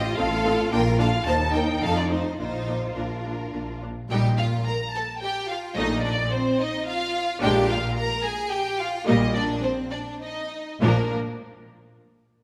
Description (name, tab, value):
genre	quick classical-period movement for string orchestra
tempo	107 BPM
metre	3/4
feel	uneven beats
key	Bb major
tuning	A4 = 440 Hz
part	rich symphonic violin section	melody	0.0-11.1 s	Bb4 to Bb5	-31 LUFS	equal	none
part	rich symphonic violin section	second line	0.0-11.1 s	Bb3 to C5	-31 LUFS	equal	none
part	clear symphonic double bass section	bass	0.0-11.1 s	A1 to F2	-31 LUFS	equal	none
part	warm symphonic cello section	bass	0.0-11.1 s	Bb2 to F4	-31 LUFS	equal	none
part	rich symphonic viola section	accompaniment	0.2-11.1 s	F3 to Eb4	-31 LUFS	equal	none
room	moderate scoring stage reverb, RT60 1.8 s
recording	none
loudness	-25 LUFS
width	mono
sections	0.0-4.1 A section; 4.1-10.8 B section; 10.8-12.4 C section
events	none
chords	0.0 F7/A; 0.7 Bb; 1.3 Eb; 1.8 F7; 2.4 Bb; 4.1 Eb/Bb; 5.8 F7/Bb; 7.4 Bb7; 9.1 Eb/Bb; 10.8 Bb